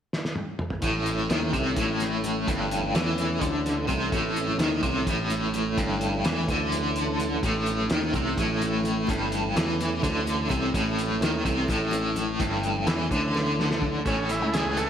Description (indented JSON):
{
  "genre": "psychedelic rock",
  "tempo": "254 BPM (eighths)",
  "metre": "7/8",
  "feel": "straight",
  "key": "unclear",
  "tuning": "A4 = 440 Hz",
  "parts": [
    { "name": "cloth-damped thuddy drum kit", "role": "drums", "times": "0.1-14.9 s", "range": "hi-hat, kick drum, snare drum, toms", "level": "-31 LUFS", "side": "equal", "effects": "none" },
    { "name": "tonewheel organ", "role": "sustained chords", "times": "0.8-14.9 s", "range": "E3 to A5", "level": "-32 LUFS", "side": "right 3 dB", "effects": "slow rotary speaker, chorus vibrato" },
    { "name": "biting overdriven guitar", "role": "riff", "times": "0.8-14.9 s", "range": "G2 to A3", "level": "-26 LUFS", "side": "left 1 dB", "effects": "tremolo" },
    { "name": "picked electric bass", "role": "bass", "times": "0.8-14.9 s", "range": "G1 to E2", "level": "-31 LUFS", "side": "equal", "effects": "none" },
    { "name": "congas", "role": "percussion", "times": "0.8-14.1 s", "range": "none", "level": "-40 LUFS", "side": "left 3 dB", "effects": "none" },
    { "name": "combo organ", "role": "melody", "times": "14.1-14.9 s", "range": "C#4 to A4", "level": "-27 LUFS", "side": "right 2 dB", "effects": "tape echo" }
  ],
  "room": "wet lush hall reverb, RT60 2.3 s",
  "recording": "dreamy mix soaked in reverb",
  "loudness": "-23 LUFS",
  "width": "side -9 dB against mid",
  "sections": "0.8-14.1 A section",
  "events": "drum fill 0.1-0.8, 6.8-7.4, 13.3-14.1",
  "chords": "0.0 N.C.; 0.8 A"
}